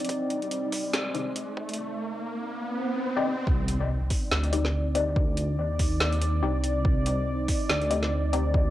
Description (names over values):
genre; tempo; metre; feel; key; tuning
deep dubstep; 142 BPM; 4/4; swing 57% on 16ths, half-time; C minor; A4 = 440 Hz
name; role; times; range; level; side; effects
deep dark ambient pad; sustained chords; 0.0-8.7 s; C4 to D5; -32 LUFS; equal; chorus, built-in reverb, cassette tape
garage drum kit; drums; 0.0-8.4 s; hi-hat, snare drum; -30 LUFS; equal; overdrive, cassette tape
riser, swell and impact; sound effects; 0.1-5.2 s; none; -33 LUFS; right 1 dB; none
electronic kick drum; drums; 0.1-8.6 s; none; -26 LUFS; equal; overdrive, high-pass filter on kick, cassette tape
filtered dub chord stab; stabs; 1.1-8.4 s; C4 to D5; -32 LUFS; left 5 dB; phaser, analog chorus, cassette tape, dub echo
dark detuned saw bass; bass; 3.5-8.7 s; C2 to Eb2; -27 LUFS; equal; tube saturation
room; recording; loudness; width
moderate spring reverb, RT60 1.2 s; home recording on cassette; -25 LUFS; side -14 dB against mid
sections
0.0-3.5 A section; 3.5-8.7 B section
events
build-up 0.0-3.5; filter sweep on synth stab 0.0-3.5; riser 0.1-3.5; swell 2.6-3.5; drop 3.5-8.7; impact 3.5-5.2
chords
0.0 Cmadd9